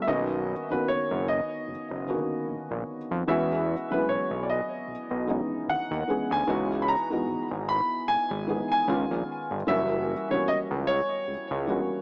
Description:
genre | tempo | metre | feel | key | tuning
contemporary R&B | 75 BPM | 4/4 | swing 58% on 16ths | unclear | A4 = 440 Hz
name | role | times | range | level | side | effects
warm baby grand piano | melody | 0.0-12.0 s | B4 to B5 | -28 LUFS | equal | tape echo
felt-muted upright piano | accompaniment | 0.0-12.0 s | D3 to G#4 | -30 LUFS | equal | none
fat analog bass | bass | 0.1-11.8 s | F#1 to E#2 | -30 LUFS | equal | none
room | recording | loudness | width
light reverb, small room ambience | dry, gritty hardware recording, transformer saturation, cassette tape, small speaker sound | -25 LUFS | side -31 dB against mid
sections
0.1-12.0 A section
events
none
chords
0.1 Bmaj7; 3.3 E69; 6.5 C#m11; 8.9 C#9; 9.7 F#7b9

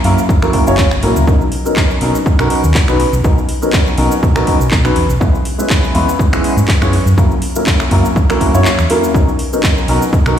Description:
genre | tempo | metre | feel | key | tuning
filtered disco house | 122 BPM | 4/4 | swing 54% on 16ths | B major | A4 = 440 Hz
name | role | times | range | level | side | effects
dark baby grand piano | accompaniment | 0.0-10.4 s | F#3 to C#5 | -15 LUFS | equal | phaser, sidechain pumping
hollow-body short-scale fingered electric bass | bass | 0.0-10.3 s | E1 to B2 | -15 LUFS | equal | sidechain pumping
house drum kit | drums | 0.0-10.4 s | cabasa, finger snaps, handclaps, hi-hat | -20 LUFS | equal | overdrive, sidechain pumping on perc, sidechain pumping on hats
electronic kick drum | drums | 0.3-10.2 s | none | -14 LUFS | equal | overdrive
room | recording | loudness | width
light reverb | played on a big sound system in a bare room, stone room reverb | -10 LUFS | side -9 dB against mid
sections
0.0-10.4 A section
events
kick drops out 8.7-9.1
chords
0.0 F#7; 1.3 Bmaj9; 5.0 E6; 6.9 F#7; 9.1 Bmaj9

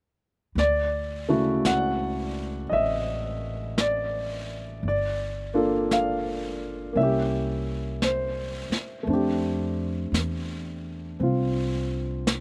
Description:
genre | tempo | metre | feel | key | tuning
jazz ballad | 57 BPM | 4/4 | swing 66% on 8ths | unclear | A4 = 440 Hz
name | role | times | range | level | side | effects
warm grand piano | accompaniment | 0.6-12.4 s | C#3 to F#5 | -28 LUFS | equal | slapback echo
upright bass | bass | 0.6-12.4 s | G1 to F2 | -33 LUFS | equal | none
vintage brush drum kit | drums | 0.6-12.4 s | brushed snare drum, hi-hat, snare drum | -32 LUFS | equal | none
room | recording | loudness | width
little or no reverb | recorded outdoors, with no room sound | -27 LUFS | mono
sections
0.6-12.4 A section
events
none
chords
0.6 Dmaj9; 4.8 Gm9; 7.0 C7b9; 9.1 F69

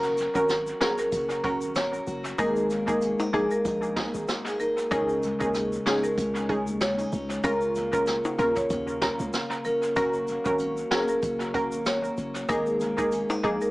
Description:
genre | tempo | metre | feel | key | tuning
dancehall | 95 BPM | 4/4 | swing 56% on 16ths | unclear | A4 = 440 Hz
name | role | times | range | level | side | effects
analog pluck | accompaniment | 0.0-13.6 s | Bb3 to Bb4 | -29 LUFS | equal | chorus, dub echo
picked steel-string acoustic guitar | arpeggios | 0.0-13.7 s | Db3 to Bb4 | -33 LUFS | left 1 dB | dub echo
warm 808-style bass | bass | 0.0-13.6 s | Gb1 to Eb2 | -36 LUFS | equal | none
tube shaker and timbales | percussion | 0.0-13.7 s | none | -39 LUFS | left 2 dB | dub echo
jazz brush drum kit | drums | 0.2-13.6 s | hi-hat, kick drum, rim click, snare drum | -33 LUFS | equal | dub echo
marimba with medium hard mallets | melody | 0.4-13.7 s | Ab4 to Db5 | -28 LUFS | equal | dub echo
room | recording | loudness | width
moderate spring reverb, RT60 1.5 s, studio reverb | echo-heavy mix, small speaker sound | -24 LUFS | side -20 dB against mid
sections
0.0-13.7 A section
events
none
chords
0.0 Gb; 2.4 Absus2; 4.9 Dbsus2; 7.4 Bbm/Db; 10.0 Gb; 12.5 Absus2

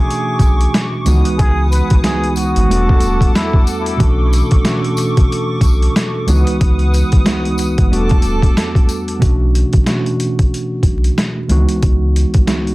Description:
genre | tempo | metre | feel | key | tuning
hip hop, boom-bap hip-hop | 92 BPM | 4/4 | swing 59% on 16ths | B dorian | A4 = 440 Hz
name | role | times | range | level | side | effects
trumpet with plunger mute | melody | 0.0-3.6 s | E4 to B4 | -22 LUFS | equal | ping-pong delay
mellow tine electric piano | accompaniment | 0.0-12.7 s | C#2 to F#4 | -18 LUFS | right 1 dB | medium stereo tremolo
hollow soft pad | sustained chords | 0.0-9.2 s | A3 to D#6 | -24 LUFS | equal | chorus
sub bass with octave | bass | 0.0-12.5 s | D1 to C#2 | -15 LUFS | equal | none
boom bap sampler-style drum kit | drums | 0.1-12.7 s | hi-hat, kick drum, snare drum | -14 LUFS | equal | overdrive
tambourine | percussion | 0.4-9.1 s | none | -31 LUFS | left 4 dB | none
room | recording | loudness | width
light reverb | dense, heavily limited modern master, vinyl crackle | -12 LUFS | side -20 dB against mid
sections
0.0-9.2 A section; 9.2-12.7 B section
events
none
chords
0.0 Bm11; 1.1 C#m11; 2.7 Em11; 4.0 Bm11; 6.3 C#m11; 7.9 Em11; 9.2 Bm11; 11.5 C#m11

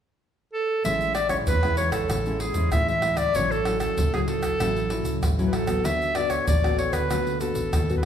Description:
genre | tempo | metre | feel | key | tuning
samba and choro | 96 BPM | 4/4 | straight | A major | A4 = 440 Hz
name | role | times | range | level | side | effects
clear clarinet | melody | 0.5-8.1 s | G#4 to E5 | -25 LUFS | equal | none
nylon-string guitar | accompaniment | 0.8-8.1 s | A2 to A4 | -29 LUFS | left 3 dB | none
hollow-body short-scale fingered electric bass | bass | 0.8-8.1 s | A1 to A2 | -30 LUFS | equal | none
egg shaker, surdo, pandeiro and tamborim | percussion | 0.8-8.1 s | none | -27 LUFS | equal | none
room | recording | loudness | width
wet large studio reverb, RT60 1.4 s | band playing live in one room | -22 LUFS | side -9 dB against mid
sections
0.8-8.1 A section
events
none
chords
0.0 N.C.; 0.8 Amaj7; 3.3 F#m7/A; 5.9 D6

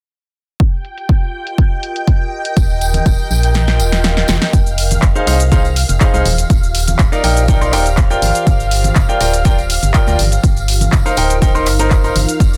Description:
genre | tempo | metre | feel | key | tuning
piano house | 122 BPM | 4/4 | straight | unclear | A4 = 440 Hz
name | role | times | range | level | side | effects
analog string pad | sustained chords | 0.6-12.6 s | D5 to G5 | -27 LUFS | equal | ensemble chorus, sidechain pumping
electronic kick drum | drums | 0.6-12.5 s | none | -15 LUFS | equal | none
house drum kit | drums | 0.6-12.6 s | handclaps, hi-hat, shaker, snare drum | -22 LUFS | equal | low-pass filter on hats, low-pass filter on snare, low-pass filter on perc
warbly tape-like pad | texture | 1.3-12.6 s | Eb4 to G5 | -28 LUFS | equal | chorus, built-in reverb, sidechain pumping
organ-like FM bass | bass | 2.6-12.6 s | D1 to D2 | -18 LUFS | equal | sidechain pumping
tambourine and congas | percussion | 2.6-12.6 s | none | -28 LUFS | equal | none
swell | sound effects | 3.7-4.5 s | none | -31 LUFS | equal | none
bright concert grand piano | riff | 5.2-12.1 s | Eb4 to C6 | -20 LUFS | equal | sidechain pumping, tape echo
room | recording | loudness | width
little or no reverb | dense, heavily limited modern master | -14 LUFS | mono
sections
0.6-4.5 A section; 4.5-12.6 B section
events
fade-in on ambient pad 0.6-4.5; filter sweep on drum 0.6-4.5; kick drops out 3.6-4.5; drum fill 3.6-4.5; swell 3.7-4.5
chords
0.6 F9sus4; 2.3 Eb; 4.3 F9sus4; 4.5 Fm7; 6.3 Ebmaj7; 8.2 Gm7; 10.2 Cm7

